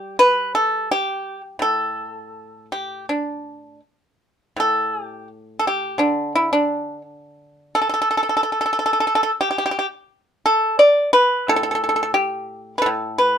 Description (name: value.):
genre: chinese traditional, Chinese solo plucked strings.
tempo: 86 BPM.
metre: 4/4.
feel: rubato.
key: unclear.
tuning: A4 = 439 Hz.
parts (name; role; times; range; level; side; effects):
pipa; solo; 0.0-13.4 s; A2 to D5; -17 LUFS; equal; none.
room: light reverb.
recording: minimal, uncompressed stereo recording.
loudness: -18 LUFS.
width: side -8 dB against mid.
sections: 0.0-4.6 A section; 4.6-13.4 B section.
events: none.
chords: none.